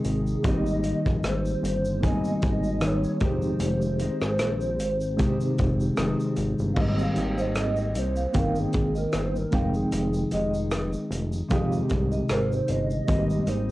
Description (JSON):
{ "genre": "indie pop, bedroom pop", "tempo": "76 BPM", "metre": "4/4", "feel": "swing 55% on 16ths", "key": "Ab major", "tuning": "A4 = 440 Hz", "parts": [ { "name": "hollow clarinet-like synth lead", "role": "melody", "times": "0.0-13.7 s", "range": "Ab4 to F5", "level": "-32 LUFS", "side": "equal", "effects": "ensemble chorus, cassette tape" }, { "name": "mellow electric guitar", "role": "accompaniment", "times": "0.0-13.7 s", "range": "F2 to Eb4", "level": "-27 LUFS", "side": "left 2 dB", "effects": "wide subtle chorus, warbly pitch drift, cassette tape" }, { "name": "reed electric piano", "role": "accompaniment", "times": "0.0-13.7 s", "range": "Ab3 to Ab5", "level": "-33 LUFS", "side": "right 3 dB", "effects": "fast tremolo, cassette tape" }, { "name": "chorused synth bass", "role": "bass", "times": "0.0-13.7 s", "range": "F1 to F2", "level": "-29 LUFS", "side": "equal", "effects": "tube saturation" }, { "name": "loose indie drum kit", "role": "drums", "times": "0.0-13.7 s", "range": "crash cymbal, hi-hat, kick drum, rim click, shaker", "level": "-29 LUFS", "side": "equal", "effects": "cassette tape" }, { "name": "vibraphone with medium mallets", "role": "second line", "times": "6.8-13.3 s", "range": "C5 to F5", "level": "-34 LUFS", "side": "right 3 dB", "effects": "lush chorus, cassette tape, analog delay" } ], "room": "moderate studio reverb, RT60 0.6 s", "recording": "home recording on cassette", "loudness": "-23 LUFS", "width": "side -17 dB against mid", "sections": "0.0-6.8 A section; 6.8-13.7 B section", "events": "soft synth lead solo 6.8-13.7", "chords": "0.5 Abmaj7; 3.2 Fm7; 6.8 Abmaj7; 9.5 Fm7; 13.1 Abmaj7" }